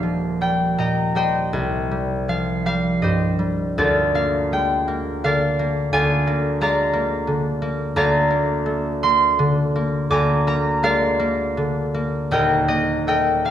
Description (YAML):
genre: classical, solo harp piece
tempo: 76-90 BPM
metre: 3/4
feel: rubato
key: Bb major from 8.0 s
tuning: A4 = 435 Hz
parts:
  - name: concert harp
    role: solo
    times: 0.0-13.5 s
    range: Eb1 to D6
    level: -18 LUFS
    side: equal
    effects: none
room: wet recital hall reverb, RT60 1.5 s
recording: recorded in a church or concert hall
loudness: -18 LUFS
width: side -10 dB against mid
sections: 0.0-13.5 A section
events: none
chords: 0.0 Eb; 1.5 Cm; 3.8 Bb7/D; 8.0 Bb/D; 10.1 Bb7/D; 12.3 Eb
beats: 0.02 0.78 | 1.53 2.28 3.01 | 3.77 4.52 5.23 | 5.93 6.61 7.28 | 7.98 8.68 9.39 | 10.12 10.83 11.57 | 12.32 13.08